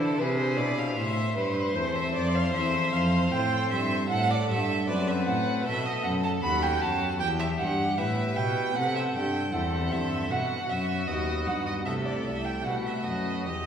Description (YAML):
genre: classical, baroque-style sonata movement with continuo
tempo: 77 BPM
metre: 4/4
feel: rubato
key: A minor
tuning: A4 = 440 Hz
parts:
  - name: rich violin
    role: melody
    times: 0.0-13.7 s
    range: E4 to C5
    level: -33 LUFS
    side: left 3 dB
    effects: none
  - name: clear violin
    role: second line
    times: 0.0-13.7 s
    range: A4 to B5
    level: -30 LUFS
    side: right 3 dB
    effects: none
  - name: chamber organ, principal chorus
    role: accompaniment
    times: 0.0-13.7 s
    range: C2 to B4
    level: -32 LUFS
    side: left 1 dB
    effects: none
  - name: clear cello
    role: bass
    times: 0.0-13.7 s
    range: C2 to D3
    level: -30 LUFS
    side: equal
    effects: none
room: wet concert hall reverb, RT60 2.0 s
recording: small room ambience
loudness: -25 LUFS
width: side -8 dB against mid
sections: 0.0-13.7 A section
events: none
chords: 0.0 E7; 1.0 Am; 4.1 F#dim; 5.7 B7; 7.2 Em; 8.8 Am; 10.3 B; 11.9 Am/C; 12.7 B7